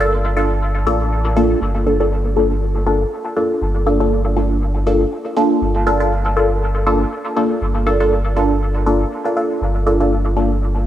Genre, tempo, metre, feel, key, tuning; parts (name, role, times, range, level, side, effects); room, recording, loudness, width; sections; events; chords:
dub techno; 120 BPM; 4/4; swing 55% on 16ths; G minor; A4 = 437 Hz
filtered dub chord stab; stabs; 0.0-10.5 s; Bb3 to A4; -16 LUFS; equal; phaser, dub echo
warm sub bass; bass; 0.0-10.9 s; G1 to A1; -19 LUFS; equal
moderate lush hall reverb, RT60 2.5 s; -15 LUFS; side -12 dB against mid
0.0-1.6 A section; 1.6-10.9 A section
0.0 Gm9